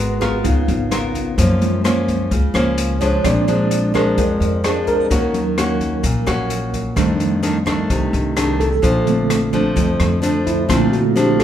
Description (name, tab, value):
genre	bossa nova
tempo	129 BPM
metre	4/4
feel	straight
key	unclear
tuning	A4 = 440 Hz
part	mellow tine electric piano	accompaniment	0.0-11.4 s	D3 to D5	-20 LUFS	right 2 dB	medium stereo tremolo
part	nylon-string guitar	accompaniment	0.0-11.4 s	F2 to Bb4	-20 LUFS	left 1 dB	none
part	upright bass	bass	0.0-11.4 s	Ab1 to Gb2	-21 LUFS	equal	none
part	open jazz drum kit	drums	0.2-11.4 s	hi-hat, kick drum, rim click	-24 LUFS	left 1 dB	none
room	moderate recital hall reverb, RT60 1.4 s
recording	recorded in a church or concert hall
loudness	-15 LUFS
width	side -10 dB against mid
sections	0.0-11.4 A section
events	tine electric piano solo 0.0-11.4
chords	0.5 Db13; 1.4 Gbmaj7; 3.2 Bb7; 5.1 Ebm7; 7.0 F13; 8.8 Bbmaj7